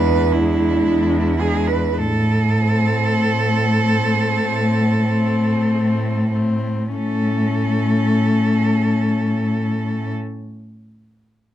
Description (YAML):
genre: classical, lyrical piece for cello ensemble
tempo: 44-59 BPM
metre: 4/4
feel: rubato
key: A minor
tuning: A4 = 440 Hz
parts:
  - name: rich cello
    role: melody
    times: 0.0-10.1 s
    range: C4 to D4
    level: -26 LUFS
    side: left 6 dB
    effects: none
  - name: rich cello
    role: second line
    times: 0.0-10.1 s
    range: E4 to B4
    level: -22 LUFS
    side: right 4 dB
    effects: none
  - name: rich cello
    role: accompaniment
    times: 0.0-10.1 s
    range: G#3 to A3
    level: -24 LUFS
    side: left 4 dB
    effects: none
  - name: warm cello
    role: bass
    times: 0.0-10.1 s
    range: E2 to A2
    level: -19 LUFS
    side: right 1 dB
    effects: none
room: light reverb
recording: close, detailed microphones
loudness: -16 LUFS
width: side -12 dB against mid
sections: 0.0-7.0 A section; 7.0-11.5 B section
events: slowing down 0.0-7.0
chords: 0.0 E7; 2.0 Am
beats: 0.84 | 1.98 3.19 4.41 5.66 | 6.96 8.15 9.33